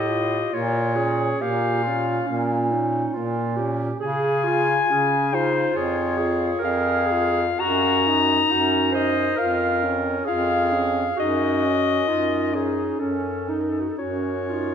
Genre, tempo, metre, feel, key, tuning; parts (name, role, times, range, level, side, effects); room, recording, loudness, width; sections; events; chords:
classical, lyrical piece for single-reed quartet; 68 BPM; 4/4; uneven beats, rubato; Db major from 4.0 s; A4 = 440 Hz
clear clarinet; melody; 0.0-14.7 s; Gb4 to Bb5; -23 LUFS; left 6 dB
clear clarinet; second line; 0.0-14.7 s; Db4 to C5; -26 LUFS; right 6 dB
mellow tenor saxophone; accompaniment; 0.0-14.7 s; Bb3 to A4; -28 LUFS; left 2 dB
clear bass clarinet; bass; 0.0-14.7 s; F2 to Db3; -25 LUFS; right 2 dB
wet scoring stage reverb, RT60 1.9 s; nothing above 11.0 kHz; -20 LUFS; side -7 dB against mid
0.0-14.7 A section
0.0 F/A; 0.5 Bbm; 4.0 Db; 5.8 Db/F; 7.6 Ebm/Gb; 9.4 Db/F; 11.2 Ebm7/Gb